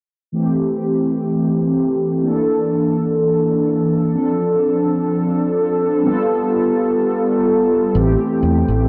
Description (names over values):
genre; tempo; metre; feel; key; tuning
vaporwave; 63 BPM; 4/4; swing 54% on 16ths; A minor; A4 = 440 Hz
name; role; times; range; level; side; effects
mellow synth brass; accompaniment; 0.3-8.9 s; E3 to A4; -18 LUFS; equal; analog chorus, analog delay
fingered electric bass; bass; 7.9-8.9 s; A1 to E2; -19 LUFS; equal; tube saturation
room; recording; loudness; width
wet plate reverb, RT60 3.9 s; dark, warm production, cassette tape; -17 LUFS; mono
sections
0.3-8.9 A section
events
none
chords
0.3 Am7; 2.2 Bbmaj7#11/E; 4.1 F6; 6.0 G9; 8.0 Am7